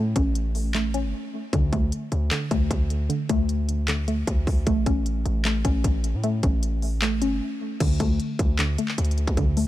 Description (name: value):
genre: hip hop, trap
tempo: 153 BPM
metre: 4/4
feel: half-time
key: unclear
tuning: A4 = 440 Hz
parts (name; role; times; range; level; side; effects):
- soft round pluck; arpeggios; 0.0-9.7 s; D3 to C#4; -27 LUFS; left 1 dB; chorus, low-pass filter, digital delay
- hard-hitting 808-style bass; bass; 0.0-9.7 s; G1 to A2; -25 LUFS; equal; none
- trap drum kit; drums; 0.2-9.7 s; crash cymbal, handclaps, hi-hat, kick drum; -26 LUFS; equal; none
room: digital ambience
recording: none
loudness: -22 LUFS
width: side -14 dB against mid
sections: 0.0-7.8 A section; 7.8-9.7 B section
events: break 1.1-1.5, 7.4-7.8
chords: 0.0 A; 1.5 D5; 4.7 A; 7.8 D5